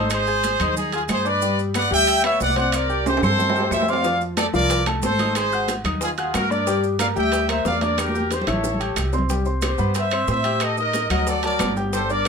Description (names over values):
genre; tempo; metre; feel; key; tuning
latin, salsa; 183 BPM; 4/4; straight; unclear; A4 = 440 Hz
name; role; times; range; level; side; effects
bright trumpet section; melody; 0.0-12.3 s; D#4 to G5; -21 LUFS; equal; none
warm upright piano; accompaniment; 0.0-12.3 s; F3 to G#6; -26 LUFS; left 2 dB; none
upright bass; bass; 0.0-12.3 s; G1 to A2; -26 LUFS; right 1 dB; none
claves; percussion; 0.1-11.8 s; none; -34 LUFS; left 4 dB; none
congas; percussion; 0.1-12.3 s; none; -30 LUFS; equal; none
maracas; percussion; 0.1-12.3 s; none; -36 LUFS; right 10 dB; none
timbales; percussion; 0.1-12.3 s; none; -29 LUFS; right 6 dB; none
bongos; percussion; 4.0-12.3 s; none; -32 LUFS; left 3 dB; none
room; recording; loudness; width
moderate small room reverb, RT60 0.5 s; minimal, uncompressed stereo recording; -18 LUFS; side -5 dB against mid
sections
0.0-9.3 A section; 9.3-12.3 B section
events
drum fill 3.1-4.0, 8.0-9.3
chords
0.1 G#; 1.4 G; 2.7 C5; 4.0 F6; 5.4 G#9; 6.7 Gm; 8.0 Em7b5; 8.6 A7; 9.3 Cmaj7; 10.6 Ebmaj7#11; 11.3 D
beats
| 0.11 0.44 0.77 1.09 | 1.42 1.75 2.08 2.40 | 2.73 3.06 3.39 3.72 | 4.04 4.37 4.70 5.03 | 5.36 5.69 6.01 6.34 | 6.67 7.00 7.33 7.66 | 7.98 8.31 8.64 8.97 | 9.30 9.63 9.96 10.29 | 10.61 10.94 11.27 11.60 | 11.93 12.26